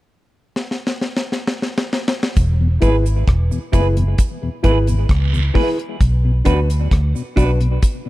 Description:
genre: roots reggae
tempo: 66 BPM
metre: 4/4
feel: straight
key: unclear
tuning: A4 = 440 Hz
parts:
  - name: deep reggae drum kit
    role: drums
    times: 0.6-8.0 s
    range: hi-hat, kick drum, rim click, snare drum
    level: -17 LUFS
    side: equal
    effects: none
  - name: vintage muted fingered electric bass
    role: bass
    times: 2.4-7.8 s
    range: E1 to D2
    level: -16 LUFS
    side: equal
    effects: tube saturation
  - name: cabasa and guiro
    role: percussion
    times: 2.4-8.0 s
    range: none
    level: -35 LUFS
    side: right 7 dB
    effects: none
  - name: mellow tonewheel organ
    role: accompaniment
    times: 2.6-8.1 s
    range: E2 to E4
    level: -26 LUFS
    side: left 3 dB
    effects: overdrive, tape echo
  - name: clean electric guitar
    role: accompaniment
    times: 2.8-7.5 s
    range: D4 to B4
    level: -26 LUFS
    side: right 6 dB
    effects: tape echo
  - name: mellow reed electric piano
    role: stabs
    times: 2.8-7.6 s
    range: D4 to B4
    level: -24 LUFS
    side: left 2 dB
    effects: fast tremolo
room: little or no reverb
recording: dark, warm production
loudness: -15 LUFS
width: side -17 dB against mid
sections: 0.0-2.4 A section; 2.4-8.1 B section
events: drum fill 0.6-2.4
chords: 0.0 N.C.; 2.4 E; 6.0 Bm

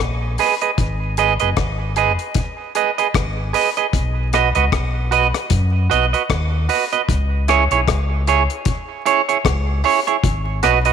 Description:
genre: roots reggae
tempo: 76 BPM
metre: 4/4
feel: swing 57% on 16ths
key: G# minor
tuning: A4 = 440 Hz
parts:
  - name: fingered electric bass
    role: bass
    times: 0.0-10.9 s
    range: F#1 to F#2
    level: -20 LUFS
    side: equal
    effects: none
  - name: clean electric guitar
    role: accompaniment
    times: 0.4-10.9 s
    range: E4 to D#5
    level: -18 LUFS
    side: right 8 dB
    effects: tape echo
  - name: deep reggae drum kit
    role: drums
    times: 0.4-10.9 s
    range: hi-hat, kick drum, rim click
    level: -22 LUFS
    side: left 3 dB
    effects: none
room: moderate plate reverb, RT60 2.8 s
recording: 1960s-style stereo, vinyl crackle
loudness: -15 LUFS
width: side -8 dB against mid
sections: 0.0-10.2 A section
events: none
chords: 0.0 G#m; 3.9 B; 7.1 C#m; 10.2 G#m7

